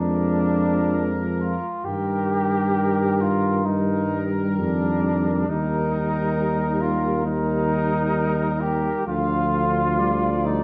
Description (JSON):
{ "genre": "classical, hymn-like piece for brass band", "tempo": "66 BPM", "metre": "4/4", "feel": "rubato", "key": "Eb major", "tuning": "A4 = 441 Hz", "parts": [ { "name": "warm trumpet section", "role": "melody", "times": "0.0-10.6 s", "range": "Bb4 to F5", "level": "-33 LUFS", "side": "equal", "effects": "none" }, { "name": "warm flugelhorn", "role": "second line", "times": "0.0-10.6 s", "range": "D4 to G4", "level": "-28 LUFS", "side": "equal", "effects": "none" }, { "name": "dark euphonium", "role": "accompaniment", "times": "0.0-10.6 s", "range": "F3 to Ab3", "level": "-31 LUFS", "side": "equal", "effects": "none" }, { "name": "warm trombone", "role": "accompaniment", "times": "0.0-10.6 s", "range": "D3 to F3", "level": "-34 LUFS", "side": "equal", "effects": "none" }, { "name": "mellow tuba", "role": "bass", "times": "0.0-10.6 s", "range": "D2 to G2", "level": "-26 LUFS", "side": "equal", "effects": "none" } ], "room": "moderate scoring stage reverb, RT60 1.7 s", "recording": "none", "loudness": "-22 LUFS", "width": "mono", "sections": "0.0-10.6 A section", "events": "none", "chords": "0.0 Bb7/F; 1.9 Eb/G; 5.5 Eb; 9.1 G7(no3)/D" }